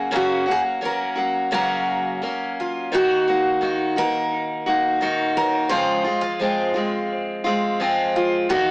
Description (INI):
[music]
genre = acoustic pop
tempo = 86 BPM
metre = 4/4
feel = straight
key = unclear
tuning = A4 = 443 Hz
[part]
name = picked steel-string acoustic guitar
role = melody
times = 0.0-8.7 s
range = F4 to C5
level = -23 LUFS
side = equal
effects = none
[part]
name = picked steel-string acoustic guitar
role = accompaniment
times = 0.0-8.7 s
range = Gb2 to Gb4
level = -20 LUFS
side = equal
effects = none
[part]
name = twelve-string electric guitar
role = arpeggios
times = 2.9-8.7 s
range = Eb3 to Ab4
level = -33 LUFS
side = equal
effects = none
[part]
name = kick drum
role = drums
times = 8.5-8.7 s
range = none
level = -36 LUFS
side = equal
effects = none
[sound]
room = moderate stone room reverb, RT60 1.1 s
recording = rough rehearsal-room recording, tube saturation, small speaker sound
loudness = -19 LUFS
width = side -25 dB against mid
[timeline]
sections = 0.0-2.9 A section; 2.9-8.7 B section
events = none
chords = 0.0 Gb; 2.9 Ebm; 5.7 Dbmaj7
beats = | 0.12 0.81 1.51 2.21 | 2.91 3.61 4.31 5.01 | 5.71 6.41 7.11 7.81 | 8.51